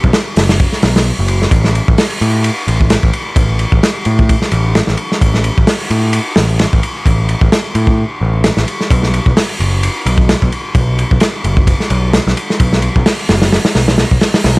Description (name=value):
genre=breakbeat, breaks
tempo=130 BPM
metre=4/4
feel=swing 56% on 16ths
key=unclear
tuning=A4 = 440 Hz
part: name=overdriven picked electric bass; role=bass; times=0.0-14.6 s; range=F#1 to A2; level=-13 LUFS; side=equal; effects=none
part: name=crunchy breakbeat drum kit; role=drums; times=0.0-14.6 s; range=hi-hat, kick drum, ride cymbal, snare drum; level=-12 LUFS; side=equal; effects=none
room=little or no reverb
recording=vinyl crackle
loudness=-10 LUFS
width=side -27 dB against mid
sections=0.0-14.6 A section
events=none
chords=none